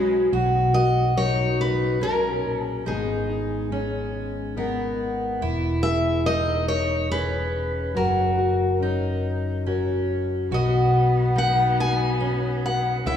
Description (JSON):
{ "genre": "acoustic folk duo or small band", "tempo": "47 BPM (dotted quarters)", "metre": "6/8", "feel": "straight", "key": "B major", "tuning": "A4 = 441 Hz", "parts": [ { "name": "warm cello", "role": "second line", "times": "0.0-0.3, 10.5-13.2 s", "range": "G#3 to C#4", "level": "-33 LUFS", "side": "right 2 dB", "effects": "none" }, { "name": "fingerpicked plugged-in steel-string acoustic guitar", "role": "accompaniment", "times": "0.0-13.2 s", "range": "G#2 to B4", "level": "-26 LUFS", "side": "left 2 dB", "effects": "none" }, { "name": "fingerpicked twelve-string acoustic guitar", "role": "arpeggios", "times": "0.0-13.2 s", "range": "B3 to F#4", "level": "-27 LUFS", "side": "right 1 dB", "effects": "none" }, { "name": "fingered electric bass", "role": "bass", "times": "0.0-13.2 s", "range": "E1 to C#2", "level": "-28 LUFS", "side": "equal", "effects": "none" }, { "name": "picked steel-string acoustic guitar", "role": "melody", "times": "0.7-13.2 s", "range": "G#4 to G#5", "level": "-26 LUFS", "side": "left 1 dB", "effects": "none" } ], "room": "wet church reverb, RT60 2.4 s", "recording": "recorded in a church or concert hall, small room ambience", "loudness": "-21 LUFS", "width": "side -9 dB against mid", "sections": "0.3-13.2 A section", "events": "none", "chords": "0.3 Badd9; 2.9 G#madd9; 5.4 E6; 8.0 F#; 10.5 B" }